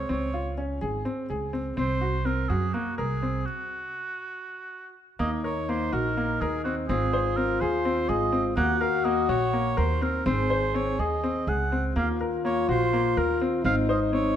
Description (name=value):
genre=contemporary instrumental, chamber music in an uneven meter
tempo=249 BPM (eighths)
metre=7/8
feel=straight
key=Eb dorian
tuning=A4 = 442 Hz
part: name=warm oboe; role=melody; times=0.0-14.4 s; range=Gb4 to Gb5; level=-30 LUFS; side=right 2 dB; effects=none
part: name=bright baby grand piano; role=arpeggios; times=0.0-14.3 s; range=Bb3 to C5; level=-29 LUFS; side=left 1 dB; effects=none
part: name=upright bass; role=bass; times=0.0-14.3 s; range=Ab1 to Gb2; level=-30 LUFS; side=right 2 dB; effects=none
part: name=mellow French horn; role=second line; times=5.2-14.4 s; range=Eb4 to Ab4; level=-28 LUFS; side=left 4 dB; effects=none
room=moderate concert hall reverb, RT60 1.7 s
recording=none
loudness=-24 LUFS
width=side -10 dB against mid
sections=0.0-5.2 A section; 5.2-14.4 B section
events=stop 3.5-5.2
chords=0.0 Dbmaj7(no3); 1.8 Ab9/C; 3.5 N.C.; 5.2 Eb5; 6.9 Ab; 8.6 Ebm; 10.3 Ab; 12.0 Eb5; 13.6 Ab